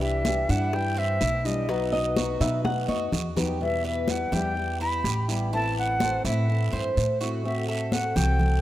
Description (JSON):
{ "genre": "latin, Cuban son and guajira", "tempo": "125 BPM", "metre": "4/4", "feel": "straight", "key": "E minor", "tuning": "A4 = 441 Hz", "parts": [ { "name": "silver concert flute", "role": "melody", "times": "0.0-8.6 s", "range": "D#5 to B5", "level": "-29 LUFS", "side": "equal", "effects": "tape echo" }, { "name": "fingerpicked steel-string acoustic guitar", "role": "accompaniment", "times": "0.0-8.6 s", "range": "B2 to F#4", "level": "-31 LUFS", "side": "left 3 dB", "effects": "none" }, { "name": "Cuban tres", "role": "arpeggios", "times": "0.0-8.6 s", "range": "B3 to C5", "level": "-34 LUFS", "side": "right 3 dB", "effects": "none" }, { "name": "upright bass", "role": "bass", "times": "0.0-8.6 s", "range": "A1 to B2", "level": "-28 LUFS", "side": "equal", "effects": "none" }, { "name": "congas", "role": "percussion", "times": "0.0-8.6 s", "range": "none", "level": "-31 LUFS", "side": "left 1 dB", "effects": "none" }, { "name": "bongos", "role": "percussion", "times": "0.3-3.5 s", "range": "none", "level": "-36 LUFS", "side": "left 5 dB", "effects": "none" }, { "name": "guiro", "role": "percussion", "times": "0.3-8.6 s", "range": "none", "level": "-38 LUFS", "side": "right 7 dB", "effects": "none" }, { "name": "flamenco guitar", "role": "second line", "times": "1.9-3.6 s", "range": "B4 to F#5", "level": "-29 LUFS", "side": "equal", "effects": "none" } ], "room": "light reverb, studio ambience", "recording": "rough home demo mix", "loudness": "-23 LUFS", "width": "side -14 dB against mid", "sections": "0.0-3.6 A section; 3.6-8.6 A section", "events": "drum fill 2.6-3.6", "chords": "0.0 Cadd9; 1.7 B; 3.6 Em; 5.5 Am; 7.4 F#dim" }